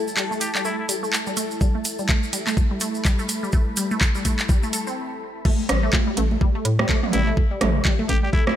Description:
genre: minimal techno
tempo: 125 BPM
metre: 4/4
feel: swing 59% on 16ths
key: unclear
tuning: A4 = 440 Hz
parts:
  - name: granular cloud pad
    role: texture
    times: 0.0-5.0 s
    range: E4 to B5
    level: -33 LUFS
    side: left 3 dB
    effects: built-in reverb, sidechain pumping
  - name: tube shaker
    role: percussion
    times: 0.1-5.0 s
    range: none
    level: -31 LUFS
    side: right 1 dB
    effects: none
  - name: resonant blip pluck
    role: riff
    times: 0.2-8.4 s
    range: G3 to A4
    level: -28 LUFS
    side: equal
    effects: phaser, cassette tape, sidechain pumping, tape echo
  - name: garage drum kit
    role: drums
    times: 0.2-8.2 s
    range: crash cymbal, handclaps, hi-hat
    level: -26 LUFS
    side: equal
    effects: overdrive, high-pass filter on hats, high-pass filter on snare, high-pass filter on cymbals
  - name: trumpet with straight mute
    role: melody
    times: 0.4-0.9, 7.1-8.5 s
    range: E4 to G4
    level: -30 LUFS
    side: left 1 dB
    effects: low-pass filter, ping-pong delay
  - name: electronic kick drum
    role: drums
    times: 1.6-8.4 s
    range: none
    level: -20 LUFS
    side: equal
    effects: overdrive
  - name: organic electronic drum kit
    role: percussion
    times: 5.5-8.6 s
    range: congas, rim click, toms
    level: -24 LUFS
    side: right 2 dB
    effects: overdrive, ping-pong delay
  - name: hollow knocking FM bass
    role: bass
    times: 5.7-8.3 s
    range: A1 to A2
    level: -22 LUFS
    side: equal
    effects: sidechain pumping
room: little or no reverb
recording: none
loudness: -19 LUFS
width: side -11 dB against mid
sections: 0.0-5.5 A section; 5.5-8.6 B section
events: build-up 0.0-5.5; filter sweep on synth pluck 0.0-5.5; stop 5.0-5.5; drop 5.5-8.6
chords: 0.0 A5

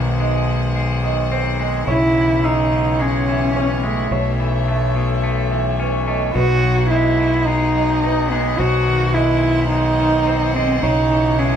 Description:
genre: rock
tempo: 107 BPM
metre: 4/4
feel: straight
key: unclear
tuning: A4 = 441 Hz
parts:
  - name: muted cello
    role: melody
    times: 0.0-11.6 s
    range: G#3 to F#4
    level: -18 LUFS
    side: right 1 dB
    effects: none
  - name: rich chamber string section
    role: sustained chords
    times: 0.0-11.6 s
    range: E3 to F#5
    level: -28 LUFS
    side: left 2 dB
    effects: none
  - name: felt-muted upright piano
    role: arpeggios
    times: 0.0-11.6 s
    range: B4 to E6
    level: -26 LUFS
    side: right 6 dB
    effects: none
  - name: twangy electric guitar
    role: arpeggios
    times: 0.0-11.6 s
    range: B2 to D#4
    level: -25 LUFS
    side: left 3 dB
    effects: none
  - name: fuzz fingered electric bass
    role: bass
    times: 0.0-11.6 s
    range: B1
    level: -19 LUFS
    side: equal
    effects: overdrive
room: moderate large studio reverb, RT60 0.9 s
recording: band playing live in one room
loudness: -15 LUFS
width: side -8 dB against mid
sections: 0.0-11.6 A section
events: none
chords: 0.0 G#/B; 1.9 C#madd9/B; 4.1 Aadd9/B; 6.4 B6; 8.6 G#/B; 10.8 C#madd9/B

